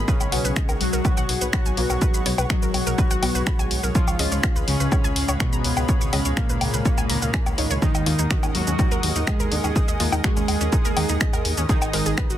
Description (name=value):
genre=melodic techno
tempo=124 BPM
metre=4/4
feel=straight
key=unclear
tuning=A4 = 440 Hz
part: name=lush unison pad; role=sustained chords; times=0.0-12.4 s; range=G#4 to D#6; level=-34 LUFS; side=right 1 dB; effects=chorus, vintage 12-bit sampler grit, sidechain pumping
part: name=wide unison pluck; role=arpeggios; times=0.0-12.4 s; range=C#4 to C#6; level=-31 LUFS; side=right 1 dB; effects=sidechain pumping, tape echo
part: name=filtered dub chord stab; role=stabs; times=0.0-12.4 s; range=G#2 to D#4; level=-32 LUFS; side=left 2 dB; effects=chorus, sidechain pumping, tape echo
part: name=dark detuned saw bass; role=bass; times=0.0-12.4 s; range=G#1 to D#2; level=-26 LUFS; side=equal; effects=sidechain pumping
part: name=analog drone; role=drone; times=0.1-12.4 s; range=G#2 to G#3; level=-35 LUFS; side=equal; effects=none
part: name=analog synth brass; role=melody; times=0.1-12.3 s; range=A#2 to G#4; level=-28 LUFS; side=equal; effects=chorus, tape echo
part: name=glassy wavetable pluck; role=second line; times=0.1-12.3 s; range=A#2 to G#3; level=-32 LUFS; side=left 1 dB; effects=none
part: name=electronic kick drum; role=drums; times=0.1-12.3 s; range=none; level=-22 LUFS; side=equal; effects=none
part: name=punchy analog drum machine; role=drums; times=0.1-12.4 s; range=finger snaps, hi-hat, shaker, woodblock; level=-26 LUFS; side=left 2 dB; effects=sidechain pumping on perc, sidechain pumping on hats, soft clipping on snare
room=little or no reverb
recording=dense, heavily limited modern master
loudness=-19 LUFS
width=side -12 dB against mid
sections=0.0-12.4 A section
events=none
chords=0.1 Bsus2; 4.0 C#7; 7.8 D#m; 11.7 G#m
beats=| 0.08 0.56 1.05 1.53 | 2.02 2.50 2.98 3.47 | 3.95 4.43 4.92 5.40 | 5.89 6.37 6.86 7.34 | 7.82 8.31 8.79 9.27 | 9.76 10.24 10.72 11.21 | 11.69 12.18